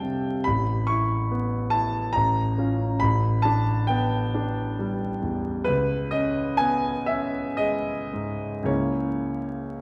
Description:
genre	classical, impressionist solo piano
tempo	52-72 BPM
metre	3/4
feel	rubato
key	unclear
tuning	A4 = 440 Hz
part	clear concert grand piano	solo	0.0-9.8 s	A1 to C#6	-25 LUFS	equal	none
room	wet scoring stage reverb, RT60 1.8 s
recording	vinyl crackle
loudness	-25 LUFS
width	mono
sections	0.0-9.8 A section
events	none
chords	0.5 Aadd9; 2.1 C#/A; 3.0 Em7/A; 5.7 C#sus2; 8.7 C#m6

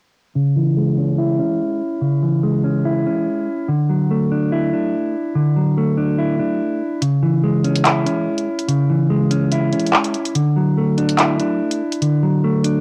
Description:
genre	hip hop, drill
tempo	144 BPM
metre	4/4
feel	half-time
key	C# phrygian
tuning	A4 = 444 Hz
part	mellow electric guitar	accompaniment	0.4-12.8 s	C#3 to E4	-18 LUFS	equal	low-pass filter, cassette tape
part	drill drum kit	drums	7.0-12.7 s	handclaps, hi-hat	-21 LUFS	equal	cassette tape
room	light reverb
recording	home recording on cassette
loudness	-18 LUFS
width	mono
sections	0.4-7.0 A section; 7.0-12.8 B section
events	filter sweep on clean electric guitar 0.4-7.0; kick muted 7.0-12.8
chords	0.4 C#m; 3.7 Dadd9; 7.0 C#m; 10.4 Dadd9

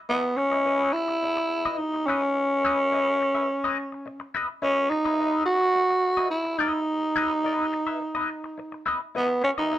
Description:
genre	funk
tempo	106 BPM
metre	4/4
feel	straight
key	unclear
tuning	A4 = 440 Hz
part	growling tenor saxophone	melody	0.1-9.8 s	B3 to F#4	-23 LUFS	equal	plate reverb
part	twangy electric guitar	accompaniment	0.1-9.8 s	E4 to E5	-29 LUFS	left 4 dB	wah
room	moderate small room ambience, RT60 0.5 s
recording	dark, warm production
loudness	-22 LUFS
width	side -13 dB against mid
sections	0.0-9.8 A section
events	none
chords	0.0 C#m9

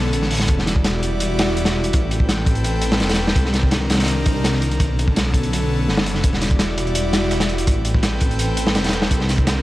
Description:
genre	drum and bass, jungle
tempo	167 BPM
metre	4/4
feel	straight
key	E minor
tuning	A4 = 440 Hz
part	airy breathy pad	sustained chords	0.0-9.6 s	D3 to G5	-23 LUFS	equal	chorus
part	dark detuned saw bass	bass	0.0-9.6 s	E1 to C2	-22 LUFS	equal	tube saturation
part	crunchy breakbeat drum kit	drums	0.1-9.6 s	hi-hat, kick drum, snare drum	-19 LUFS	equal	none
part	dusty soul sampler-style drum kit	drums	6.2-9.6 s	hi-hat, snare drum	-32 LUFS	right 3 dB	none
room	little or no reverb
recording	dry, gritty hardware recording, cassette tape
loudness	-16 LUFS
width	side -16 dB against mid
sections	0.0-9.6 A section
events	none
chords	0.5 Em9; 1.9 Am9; 3.4 Cm9; 4.8 Bm9; 6.2 Em9; 7.7 Am9; 9.1 Cm9

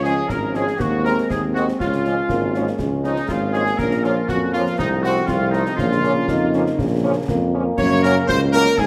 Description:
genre	military-style march for wind band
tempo	120 BPM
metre	2/4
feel	straight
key	Db major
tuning	A4 = 440 Hz
part	clear trumpet section	melody	0.0-8.9 s	Eb4 to Db5	-26 LUFS	equal	none
part	warm euphonium	second line	0.0-8.9 s	Ab3 to F4	-28 LUFS	equal	none
part	warm woodwind section	second line	0.0-8.9 s	Eb4 to Db5	-27 LUFS	equal	none
part	warm French horn section	accompaniment	0.0-8.6 s	Eb3 to Db4	-29 LUFS	equal	none
part	warm trombone section	sustained chords	0.0-8.9 s	Db3 to Db4	-30 LUFS	equal	none
part	warm tuba	bass	0.0-8.9 s	Ab1 to Ab2	-24 LUFS	equal	none
part	concert snare drum, concert bass drum and clash cymbals	drums	0.0-8.9 s	none	-31 LUFS	equal	none
room	moderate recital hall reverb, RT60 1.4 s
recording	none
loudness	-19 LUFS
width	mono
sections	0.0-8.9 A section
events	none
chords	0.0 Db; 0.8 Ab/Eb; 1.8 Db; 3.8 Bbm; 4.8 F/C; 5.8 Bbm; 7.8 Gb

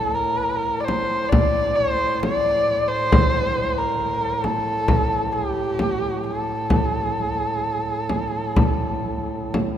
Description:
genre	caucasian folk, Caucasian lament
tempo	57-69 BPM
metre	4/4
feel	rubato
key	A phrygian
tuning	A4 = 438 Hz
part	dark erhu	melody	0.0-9.5 s	G4 to D5	-22 LUFS	equal	none
part	mellow duduk	drone	0.0-9.8 s	A2	-29 LUFS	equal	none
part	frame drum	percussion	0.9-9.8 s	none	-23 LUFS	equal	none
room	wet cathedral reverb, RT60 4.2 s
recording	minimal, uncompressed stereo recording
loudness	-19 LUFS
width	side -10 dB against mid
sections	0.0-9.8 A section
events	none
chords	none

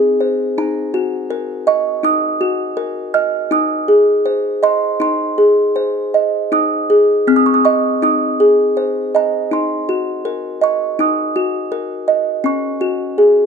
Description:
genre	children's music, lullaby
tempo	81 BPM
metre	4/4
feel	rubato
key	unclear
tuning	A4 = 439 Hz
part	music box	solo	0.0-13.5 s	C4 to F6	-13 LUFS	right 1 dB	none
room	light reverb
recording	close, detailed microphones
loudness	-13 LUFS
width	side -6 dB against mid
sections	0.0-13.5 A section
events	none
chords	0.0 Ab; 0.6 Ebm; 3.5 Ab; 9.5 Ebm; 12.4 Ab7sus4

